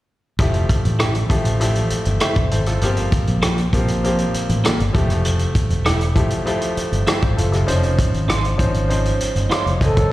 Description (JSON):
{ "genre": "lush 1970s-style soul", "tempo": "99 BPM", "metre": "4/4", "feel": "straight", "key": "F major", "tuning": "A4 = 439 Hz", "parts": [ { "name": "bright grand piano", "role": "accompaniment", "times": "0.4-10.1 s", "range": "F3 to F5", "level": "-23 LUFS", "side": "left 1 dB", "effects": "tube saturation, slapback echo" }, { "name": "fingered electric bass", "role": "bass", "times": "0.4-10.1 s", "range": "E1 to Bb1", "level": "-19 LUFS", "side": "equal", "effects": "none" }, { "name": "vintage drum kit", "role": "drums", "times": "0.4-10.1 s", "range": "hi-hat, kick drum, rim click", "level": "-21 LUFS", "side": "equal", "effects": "none" }, { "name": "electric guitar through a small old amp", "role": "riff", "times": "1.0-9.7 s", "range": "A3 to C5", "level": "-24 LUFS", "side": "right 3 dB", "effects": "harmonic tremolo, slapback echo" }, { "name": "breathy flugelhorn", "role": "melody", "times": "9.9-10.1 s", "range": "A4", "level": "-20 LUFS", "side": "equal", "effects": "slapback echo" } ], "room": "little or no reverb", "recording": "live gig heard through the venue's PA, recital hall reverb", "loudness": "-16 LUFS", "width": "side -16 dB against mid", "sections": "0.4-10.1 A section", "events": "none", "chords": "0.4 Fmaj9; 2.8 C7sus4/G; 4.9 Fmaj9; 7.7 Dbmaj9/F" }